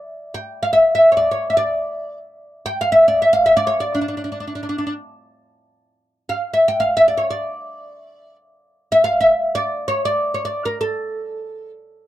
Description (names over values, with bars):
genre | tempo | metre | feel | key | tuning
Arabic maqam ensemble | free time | none | none | D maqam nahawand | A4 = 440 Hz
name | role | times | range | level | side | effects
oud | solo | 0.3-11.7 s | D4 to G5 | -16 LUFS | equal | none
room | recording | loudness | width
little or no reverb | dry, close 1970s-style studio recording | -15 LUFS | side -14 dB against mid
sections
0.0-6.0 A section; 6.0-12.1 A section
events
none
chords
none